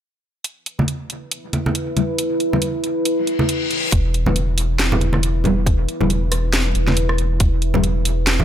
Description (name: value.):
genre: deep dubstep.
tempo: 138 BPM.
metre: 4/4.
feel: swing 58% on 16ths, half-time.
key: E minor.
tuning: A4 = 440 Hz.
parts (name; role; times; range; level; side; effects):
deep dark ambient pad; sustained chords; 1.5-8.4 s; E4 to B4; -24 LUFS; equal; chorus, built-in reverb.
garage drum kit; drums; 0.4-8.4 s; hi-hat, rim click, snare drum; -22 LUFS; equal; overdrive.
filtered dub chord stab; stabs; 0.8-7.9 s; G3 to B4; -24 LUFS; left 2 dB; phaser, lush chorus, dub echo.
congas; percussion; 0.8-8.4 s; none; -22 LUFS; right 1 dB; dub echo.
reverse cymbal; sound effects; 3.3-3.9 s; none; -25 LUFS; left 6 dB; none.
soft dub sub bass; bass; 3.9-8.4 s; E1; -19 LUFS; equal; none.
electronic kick drum; drums; 3.9-7.5 s; none; -17 LUFS; equal; overdrive.
room: light reverb, digital ambience.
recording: none.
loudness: -17 LUFS.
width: side -10 dB against mid.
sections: 0.4-3.9 A section; 3.9-8.4 B section.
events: filter sweep on synth stab 0.4-3.9; reverse cymbal 3.3-3.9.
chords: 0.4 Em.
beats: | 0.45 0.88 1.31 1.75 | 2.19 2.62 3.05 3.49 | 3.92 4.36 4.79 5.23 | 5.66 6.10 6.53 6.97 | 7.40 7.84 8.27.